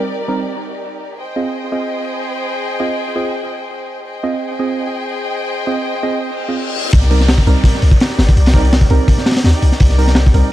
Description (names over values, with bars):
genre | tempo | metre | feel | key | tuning
drum and bass, jungle | 167 BPM | 4/4 | swing 54% on 16ths | C minor | A4 = 440 Hz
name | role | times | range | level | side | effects
muted studio string section | sustained chords | 0.0-10.5 s | Eb4 to G5 | -23 LUFS | left 1 dB | none
deep mellow chord stab | stabs | 0.0-10.5 s | G3 to Eb5 | -22 LUFS | right 3 dB | chorus, dub echo
reverse cymbal and downlifter | sound effects | 6.4-9.8 s | none | -26 LUFS | left 4 dB | none
warm 808-style bass | bass | 6.9-10.4 s | G1 to Eb2 | -12 LUFS | equal | none
crunchy breakbeat drum kit | drums | 6.9-10.4 s | hi-hat, kick drum, snare drum | -12 LUFS | equal | none
room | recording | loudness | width
light reverb | dark, warm production | -13 LUFS | side -14 dB against mid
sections
0.0-6.9 A section; 6.9-10.5 B section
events
reverse cymbal 6.4-6.9; drop 6.9-10.5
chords
0.0 Cm7; 1.2 Fm7; 6.9 Cm7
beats
0.10 0.46 0.82 | 1.18 1.54 1.90 2.26 | 2.62 2.98 3.33 3.69 | 4.05 4.41 4.77 5.13 | 5.49 5.85 6.21 6.57 | 6.93 7.29 7.65 8.01 | 8.36 8.72 9.08 9.44 | 9.80 10.16 10.52